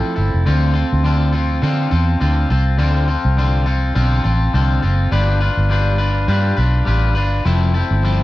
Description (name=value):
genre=indie pop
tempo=103 BPM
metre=4/4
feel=swing 55% on 16ths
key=D dorian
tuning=A4 = 440 Hz
part: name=electric guitar at the edge of break-up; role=accompaniment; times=0.0-8.2 s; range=D3 to B4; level=-20 LUFS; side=left 2 dB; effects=wide subtle chorus, vibrato effect
part: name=warm upright piano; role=accompaniment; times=0.0-0.5 s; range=A3 to C5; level=-26 LUFS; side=right 6 dB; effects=cassette tape
part: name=vintage muted fingered electric bass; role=bass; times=0.2-8.2 s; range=F1 to D3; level=-16 LUFS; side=equal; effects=none
room=little or no reverb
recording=dry, close 1970s-style studio recording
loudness=-14 LUFS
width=side -16 dB against mid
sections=0.5-8.2 A section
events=none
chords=0.5 Dm7; 5.1 G7; 7.5 Fmaj7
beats=| 0.46 1.04 1.63 2.21 | 2.79 3.37 3.96 4.54 | 5.12 5.70 6.29 6.87 | 7.45 8.03